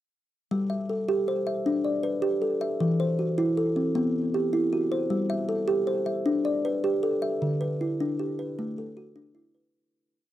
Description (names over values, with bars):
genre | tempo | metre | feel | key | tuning
southern african traditional, mbira-style interlocking cycle | 104 BPM (dotted quarters) | 12/8 | straight | G major | A4 = 442 Hz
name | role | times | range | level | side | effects
kalimba | solo | 0.5-9.9 s | D3 to E5 | -24 LUFS | equal | slapback echo
room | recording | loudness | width
little or no reverb | recorded outdoors, with no room sound | -24 LUFS | side -13 dB against mid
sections
0.5-9.7 A section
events
fade-out 7.4-9.7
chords
0.5 G; 2.8 Em; 5.1 G; 7.4 D